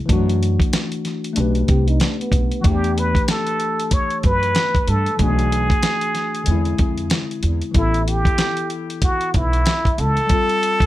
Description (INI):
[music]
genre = hip hop, jazz-hop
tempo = 94 BPM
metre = 4/4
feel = swing 60% on 16ths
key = unclear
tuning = A4 = 440 Hz
[part]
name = tine electric piano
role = accompaniment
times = 0.0-10.9 s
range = D3 to B4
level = -24 LUFS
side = left 4 dB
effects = none
[part]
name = upright bass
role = bass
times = 0.1-10.2 s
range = A1 to G2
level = -20 LUFS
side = equal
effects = none
[part]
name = dusty soul sampler-style drum kit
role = drums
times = 0.1-10.9 s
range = hi-hat, kick drum, snare drum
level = -19 LUFS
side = equal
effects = none
[part]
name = trombone with bucket mute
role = second line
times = 1.7-2.6 s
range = B3 to G4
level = -26 LUFS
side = right 2 dB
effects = none
[part]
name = trumpet with plunger mute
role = melody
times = 2.6-10.9 s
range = E4 to C#5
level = -21 LUFS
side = equal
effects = ping-pong delay
[sound]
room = light reverb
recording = none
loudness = -16 LUFS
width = side -15 dB against mid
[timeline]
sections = 0.0-10.9 A section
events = none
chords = 0.1 Dadd9/F#; 1.4 Bm7b13; 2.6 Em11; 5.2 Bm7; 6.5 Eaug7; 7.7 A5; 10.3 Fadd9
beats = | 0.09 0.73 1.36 2.00 | 2.64 3.28 3.92 4.56 | 5.20 5.83 6.47 7.11 | 7.75 8.39 9.03 9.66 | 10.30